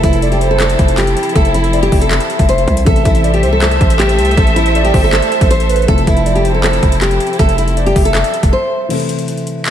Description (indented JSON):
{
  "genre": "hip hop, trap",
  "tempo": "159 BPM",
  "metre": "4/4",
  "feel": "half-time",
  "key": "unclear",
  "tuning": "A4 = 441 Hz",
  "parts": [
    { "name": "nylon-string guitar", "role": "melody", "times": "0.0-8.9 s", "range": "E4 to C5", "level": "-17 LUFS", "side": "equal", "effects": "tape echo" },
    { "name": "hollow clarinet-like synth lead", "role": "second line", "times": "0.0-8.9 s", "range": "B4 to E5", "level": "-20 LUFS", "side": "right 2 dB", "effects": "chorus, phaser, tape echo" },
    { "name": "dark baby grand piano", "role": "accompaniment", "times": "0.0-9.7 s", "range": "C3 to A4", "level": "-23 LUFS", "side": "left 3 dB", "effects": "low-pass filter" },
    { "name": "warm symphonic string section", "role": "sustained chords", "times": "0.0-8.9 s", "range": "F3 to E5", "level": "-20 LUFS", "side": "left 1 dB", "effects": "none" },
    { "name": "distorted 808-style bass", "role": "bass", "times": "0.0-8.5 s", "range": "F1 to C2", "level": "-15 LUFS", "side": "equal", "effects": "distortion" },
    { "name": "trap drum kit", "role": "drums", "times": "0.0-9.7 s", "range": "crash cymbal, handclaps, hi-hat, kick drum", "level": "-15 LUFS", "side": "equal", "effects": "overdrive" }
  ],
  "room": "light reverb, studio ambience",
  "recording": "none",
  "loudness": "-10 LUFS",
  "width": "side -10 dB against mid",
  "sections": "0.0-8.9 A section",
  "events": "break 8.5-8.9, 8.9-9.7",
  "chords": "0.0 Fmaj7; 2.9 Am; 5.9 Fmaj7; 8.9 Am"
}